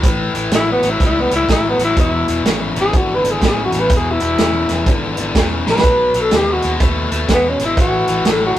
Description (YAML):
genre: electric blues shuffle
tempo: 124 BPM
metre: 4/4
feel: swing 63% on 8ths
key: E mixolydian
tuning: A4 = 440 Hz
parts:
  - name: cranked stack guitar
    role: riff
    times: 0.0-8.6 s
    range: E2 to A3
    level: -20 LUFS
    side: left 3 dB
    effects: overdrive
  - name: vintage muted fingered electric bass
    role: bass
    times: 0.0-8.6 s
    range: E1 to E2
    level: -24 LUFS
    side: right 1 dB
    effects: none
  - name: vintage drum kit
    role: drums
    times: 0.0-8.6 s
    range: hi-hat, kick drum, snare drum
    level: -17 LUFS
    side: right 1 dB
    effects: none
  - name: growling tenor saxophone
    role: melody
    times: 0.6-8.6 s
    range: B3 to B4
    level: -16 LUFS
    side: left 1 dB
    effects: none
room: light reverb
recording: rough rehearsal-room recording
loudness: -13 LUFS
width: side -12 dB against mid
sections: 0.0-8.6 A section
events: tenor saxophone solo 0.0-8.6; drum fill 5.6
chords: 0.0 A7; 2.0 E7; 5.8 B7; 7.8 A5